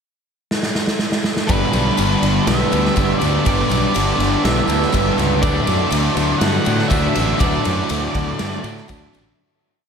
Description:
rock, shoegaze and dream pop; 122 BPM; 4/4; straight; D major; A4 = 440 Hz
raw garage drum kit; drums; 0.5-9.3 s; kick drum, ride cymbal, snare drum; -21 LUFS; equal
octave-fuzz lead guitar; melody; 1.5-8.8 s; B4 to F#5; -24 LUFS; equal; distortion, analog delay
picked twelve-string acoustic guitar; arpeggios; 1.5-9.4 s; E3 to F#4; -27 LUFS; right 8 dB; wide subtle chorus, analog delay
cranked stack guitar; riff; 1.5-9.4 s; G2 to D4; -24 LUFS; right 7 dB; overdrive, reverse reverb
overdriven electric guitar; riff; 1.5-9.4 s; G2 to D4; -25 LUFS; equal
overdriven semi-hollow guitar; riff; 1.5-9.4 s; G2 to D4; -23 LUFS; left 8 dB; ensemble chorus
fuzz fingered electric bass; bass; 1.5-9.3 s; G1 to A2; -21 LUFS; equal; overdrive
tambourine; percussion; 1.5-9.2 s; -37 LUFS; left 12 dB
moderate huge ambient reverb, RT60 5.0 s; dreamy mix soaked in reverb; -15 LUFS; side -6 dB against mid
0.0-1.5 pickup bar; 1.5-9.4 A section
drum fill 0.5-1.5; fade-out 7.4-9.4
0.0 N.C.; 1.5 G6; 5.4 Dadd9

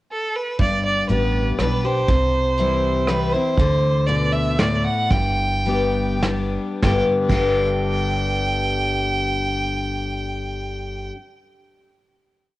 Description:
honky-tonk and classic country; 96-121 BPM; 3/4; straight; G major; A4 = 437 Hz
clear fiddle; melody; 0.1-11.1 s; A4 to G5; -23 LUFS; right 2 dB; cassette tape
picked steel-string acoustic guitar; accompaniment; 0.6-11.2 s; G2 to G4; -22 LUFS; left 3 dB; cassette tape
upright bass; bass; 0.6-11.1 s; G1 to D2; -25 LUFS; right 1 dB
soft brush drum kit; drums; 0.6-7.5 s; crash cymbal, hi-hat, kick drum, rim click, snare drum; -23 LUFS; right 1 dB
light reverb, studio reverb; home recording on cassette; -18 LUFS; side -16 dB against mid
0.0-0.6 pickup bar; 0.6-6.8 A section; 6.8-10.6 final chord
slowing down 3.6-6.8
0.0 N.C.; 0.6 G; 2.1 C; 3.6 D5; 5.1 G

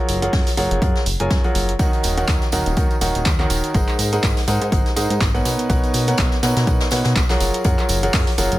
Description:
piano house; 123 BPM; 4/4; swing 56% on 16ths; A4 = 440 Hz
clear baby grand piano; riff; 0.0-8.6 s; Cb3 to Ab5; -21 LUFS; right 1 dB; sidechain pumping, ping-pong delay
plucky analog bass; bass; 0.1-8.6 s; Eb1 to B2; -22 LUFS; equal; sidechain pumping
punchy analog drum machine; drums; 0.1-8.6 s; handclaps, hi-hat; -26 LUFS; right 1 dB
vintage brush drum kit; drums; 0.1-8.5 s; hi-hat, snare drum; -30 LUFS; left 2 dB; high-pass filter on hats, high-pass filter on snare, high-pass filter on room
electronic kick drum; drums; 0.3-8.2 s; -20 LUFS; equal; overdrive
tambourine; percussion; 1.8-8.6 s; -33 LUFS; right 4 dB
little or no reverb; -16 LUFS; side -16 dB against mid
0.0-8.6 A section
0.0 Gbmaj9; 1.8 Ebm7; 3.7 Ab9; 5.5 Bmaj9; 7.4 Gbmaj9

